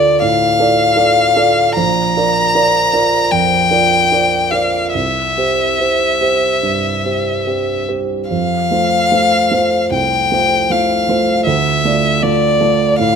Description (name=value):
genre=classical, romantic duo for violin and grand piano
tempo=69-80 BPM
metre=4/4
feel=rubato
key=F major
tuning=A4 = 440 Hz
part: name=clear violin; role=melody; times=0.0-13.2 s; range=D5 to Bb5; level=-14 LUFS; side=left 3 dB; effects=none
part: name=warm grand piano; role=accompaniment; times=0.0-13.2 s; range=Bb1 to D5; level=-16 LUFS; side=right 3 dB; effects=none
room=light reverb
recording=close, detailed microphones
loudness=-12 LUFS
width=side -6 dB against mid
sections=0.0-13.2 A section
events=none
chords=0.0 Dm; 1.8 Bb; 4.9 C; 8.3 F; 11.5 Dm